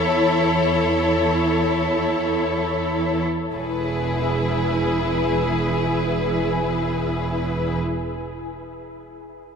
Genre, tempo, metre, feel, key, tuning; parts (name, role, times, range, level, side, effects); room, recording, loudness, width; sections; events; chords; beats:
classical, slow romantic movement for string orchestra; free time; E major; A4 = 442 Hz
rich studio violin section; melody; 0.0-7.8 s; B4 to C#5; -26 LUFS; left 6 dB
rich studio violin section; second line; 0.0-7.8 s; G#4 to A4; -27 LUFS; left 1 dB
rich studio viola section; accompaniment; 0.0-7.8 s; E4; -25 LUFS; equal
rich studio cello section; bass; 0.0-7.8 s; E2; -26 LUFS; right 4 dB
rich studio double bass section; bass; 3.5-7.8 s; E1; -27 LUFS; right 4 dB
wet cathedral reverb, RT60 6.8 s; in a vast, echoing space; -19 LUFS; side -6 dB against mid
0.0-3.6 A section; 3.6-9.4 B section
slowing down 0.0-3.6
0.0 A/E
free time